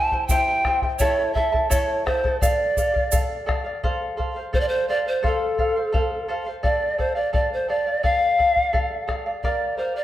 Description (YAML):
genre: andean folk, Andean ensemble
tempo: 85 BPM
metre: 2/4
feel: straight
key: D minor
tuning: A4 = 439 Hz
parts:
  - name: polished pan flute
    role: melody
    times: 0.0-10.0 s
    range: A4 to A5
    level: -21 LUFS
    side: equal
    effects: none
  - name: charango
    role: accompaniment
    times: 0.0-10.0 s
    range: E4 to A5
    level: -27 LUFS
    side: equal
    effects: none
  - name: bombo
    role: percussion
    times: 0.1-9.6 s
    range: none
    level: -25 LUFS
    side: left 1 dB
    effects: none
  - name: egg shaker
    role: percussion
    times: 0.3-3.3 s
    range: none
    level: -31 LUFS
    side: right 7 dB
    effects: none
room: wet recital hall reverb, RT60 1.4 s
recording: none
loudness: -20 LUFS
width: side -13 dB against mid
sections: 0.0-3.8 A section; 3.8-10.0 B section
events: none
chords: 0.0 C; 1.0 A; 2.4 Dm; 3.8 F; 6.6 Dm; 9.4 Bb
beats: 0.30 | 1.01 1.72 | 2.42 3.13 | 3.83 4.54 | 5.24 5.94 | 6.64 7.34 | 8.04 8.74 | 9.44